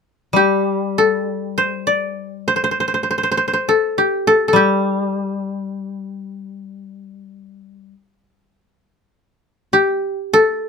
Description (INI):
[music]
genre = japanese traditional, Japanese chamber music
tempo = 49-54 BPM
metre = 4/4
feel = rubato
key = unclear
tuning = A4 = 439 Hz
[part]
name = koto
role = accompaniment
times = 0.3-7.9 s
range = G3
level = -22 LUFS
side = left 4 dB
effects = none
[part]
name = koto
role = melody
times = 0.4-10.7 s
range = G4 to D5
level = -16 LUFS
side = left 1 dB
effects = none
[sound]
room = light reverb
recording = close, detailed microphones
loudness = -16 LUFS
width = side -5 dB against mid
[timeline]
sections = 0.3-10.7 A section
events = none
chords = none